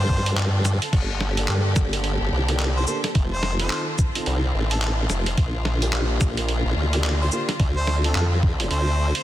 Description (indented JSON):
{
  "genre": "glitch hop",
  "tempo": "108 BPM",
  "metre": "4/4",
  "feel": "swing 61% on 16ths",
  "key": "G minor",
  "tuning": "A4 = 438 Hz",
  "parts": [
    { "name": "clear harmonica", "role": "melody", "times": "0.0-9.2 s", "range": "A4 to C5", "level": "-30 LUFS", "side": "equal", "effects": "vintage 12-bit sampler grit, tape echo" },
    { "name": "rich chamber string section", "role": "sustained chords", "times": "0.0-9.2 s", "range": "D3 to A4", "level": "-30 LUFS", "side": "left 1 dB", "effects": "vintage 12-bit sampler grit, sidechain pumping" },
    { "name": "formant-sweep wobble bass", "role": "bass", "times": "0.0-9.1 s", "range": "F1 to G2", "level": "-22 LUFS", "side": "equal", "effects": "chorus" },
    { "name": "electronic kick drum", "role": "drums", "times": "0.1-8.6 s", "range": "none", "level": "-22 LUFS", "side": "equal", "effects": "none" },
    { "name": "boom bap sampler-style drum kit", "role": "drums", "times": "0.3-9.2 s", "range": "crash cymbal, handclaps, hi-hat, shaker, snare drum", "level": "-28 LUFS", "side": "right 1 dB", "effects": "soft clipping on snare" },
    { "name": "dark concert grand piano", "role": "stabs", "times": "1.4-8.7 s", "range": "Bb3 to A4", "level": "-32 LUFS", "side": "right 1 dB", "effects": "sidechain pumping, tape echo" }
  ],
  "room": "light reverb",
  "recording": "dense, heavily limited modern master",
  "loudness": "-20 LUFS",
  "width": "side -13 dB against mid",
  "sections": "0.0-9.2 A section",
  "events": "none",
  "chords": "0.0 Dm7; 0.9 Gmadd9; 3.2 F7; 5.4 Bb6; 7.6 Dm7"
}